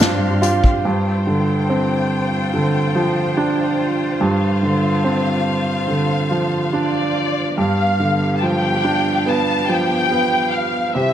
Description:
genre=pop ballad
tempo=71 BPM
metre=4/4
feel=straight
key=unclear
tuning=A4 = 440 Hz
part: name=clear baby grand piano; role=accompaniment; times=0.0-11.1 s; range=G2 to F4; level=-18 LUFS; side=right 2 dB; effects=none
part: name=rich studio string section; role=sustained chords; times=0.0-11.1 s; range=G3 to C6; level=-25 LUFS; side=left 2 dB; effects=none
part: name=nylon-string guitar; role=arpeggios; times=0.0-1.4 s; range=G2 to G4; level=-28 LUFS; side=left 5 dB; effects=none
part: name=dark studio cello section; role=bass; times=0.0-0.8 s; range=G2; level=-23 LUFS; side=equal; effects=none
part: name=unplugged drum kit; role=drums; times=0.0-0.8 s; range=hi-hat, kick drum, snare drum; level=-17 LUFS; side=equal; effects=none
part: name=warm studio violin section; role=melody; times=6.8-11.1 s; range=D5 to A5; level=-20 LUFS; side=left 2 dB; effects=none
room=moderate scoring stage reverb, RT60 1.9 s, small room ambience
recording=none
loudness=-16 LUFS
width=side -10 dB against mid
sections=0.8-7.6 A section; 7.6-11.1 B section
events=none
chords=0.0 G7sus4; 7.6 G7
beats=| 0.85 1.70 2.54 3.38 | 4.21 5.05 5.89 6.73 | 7.58 8.42 9.27 10.11 | 10.95

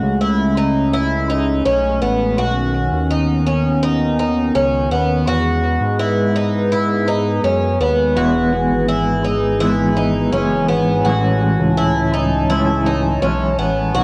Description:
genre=dream pop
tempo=83 BPM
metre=4/4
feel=straight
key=E major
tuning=A4 = 436 Hz
part: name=hollow soft pad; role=sustained chords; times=0.0-14.0 s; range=D#3 to B5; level=-22 LUFS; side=equal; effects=chorus, cassette tape
part: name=picked twelve-string acoustic guitar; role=arpeggios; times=0.0-14.0 s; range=B3 to F#4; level=-22 LUFS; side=equal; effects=subtle chorus, cassette tape, analog delay
part: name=fat analog bass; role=bass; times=0.0-14.0 s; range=E1 to G#2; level=-24 LUFS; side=equal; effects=none
part: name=mellow electric guitar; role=accompaniment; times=8.2-14.0 s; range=A2 to E4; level=-21 LUFS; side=equal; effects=tremolo, lush chorus, cassette tape
room=moderate spring reverb, RT60 1.3 s, digital ambience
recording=home recording on cassette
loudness=-17 LUFS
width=mono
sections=0.0-8.2 A section; 8.2-14.0 A section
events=none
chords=0.0 Amaj7; 2.4 Badd9; 5.3 E; 11.1 Amaj7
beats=0.21 0.93 1.66 | 2.38 3.10 3.83 4.55 | 5.27 5.99 6.72 7.44 | 8.16 8.89 9.61 10.33 | 11.05 11.78 12.50 13.22 | 13.95

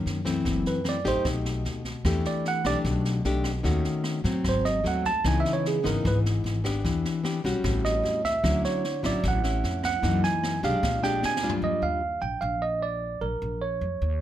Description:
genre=bossa nova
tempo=150 BPM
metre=4/4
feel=straight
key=unclear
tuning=A4 = 439 Hz
part: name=nylon-string guitar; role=accompaniment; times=0.0-12.0 s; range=F#2 to G4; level=-28 LUFS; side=left 3 dB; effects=none
part: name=upright bass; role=bass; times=0.0-14.2 s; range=F#1 to A2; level=-29 LUFS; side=equal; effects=none
part: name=open jazz drum kit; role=drums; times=0.1-11.6 s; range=kick drum, rim click, snare drum, toms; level=-33 LUFS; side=equal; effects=none
part: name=tine electric piano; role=melody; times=0.7-14.2 s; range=G#4 to A5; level=-27 LUFS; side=right 4 dB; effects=none
room=light reverb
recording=none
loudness=-24 LUFS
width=side -12 dB against mid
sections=0.0-11.6 A section; 11.6-14.2 B section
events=tine electric piano solo 0.0-11.6; drum fill 11.2-11.6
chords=0.5 F#m7b5; 1.3 B7alt; 2.1 Em7; 3.6 D#m7b5; 4.4 G#7b9; 5.2 C#m9; 6.8 Em7; 7.6 A6; 8.4 Dmaj9; 10.0 F#13; 10.8 A#6; 11.6 Ebmaj9; 13.2 Bbm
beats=0.06 | 0.45 0.85 1.25 1.65 | 2.05 2.45 2.85 3.25 | 3.65 4.05 4.45 4.85 | 5.25 5.64 6.04 6.44 | 6.84 7.24 7.64 8.04 | 8.44 8.84 9.23 9.63 | 10.03 10.43 10.83 11.23 | 11.62 12.02 12.42 12.82 | 13.22 13.62 14.02

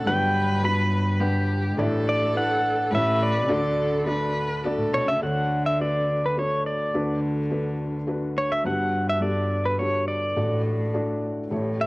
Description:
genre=acoustic folk-pop ballad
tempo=105 BPM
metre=3/4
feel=straight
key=D major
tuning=A4 = 440 Hz
part: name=pedal steel guitar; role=melody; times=0.0-11.9 s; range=B4 to B5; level=-25 LUFS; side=equal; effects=cassette tape
part: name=clear viola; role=second line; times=0.0-5.2 s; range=G4 to B4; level=-30 LUFS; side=equal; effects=cassette tape
part: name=felt-muted upright piano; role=accompaniment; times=0.0-11.9 s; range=G1 to F#5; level=-27 LUFS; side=left 1 dB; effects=cassette tape
part: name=warm cello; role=bass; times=0.0-11.9 s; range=G2 to D3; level=-27 LUFS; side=equal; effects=none
room=light reverb, studio reverb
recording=home recording on cassette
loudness=-22 LUFS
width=side -22 dB against mid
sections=0.0-5.2 A section; 5.2-11.9 B section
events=none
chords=0.1 Gmaj7; 1.8 Asus4; 2.9 A; 3.5 Dmaj7; 6.9 Bm7/D; 8.7 Gmaj7; 10.4 D/A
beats=| 0.07 0.64 1.21 | 1.78 2.35 2.92 | 3.50 4.07 4.64 | 5.22 5.79 6.37 | 6.94 7.51 8.08 | 8.65 9.22 9.80 | 10.37 10.94 11.52

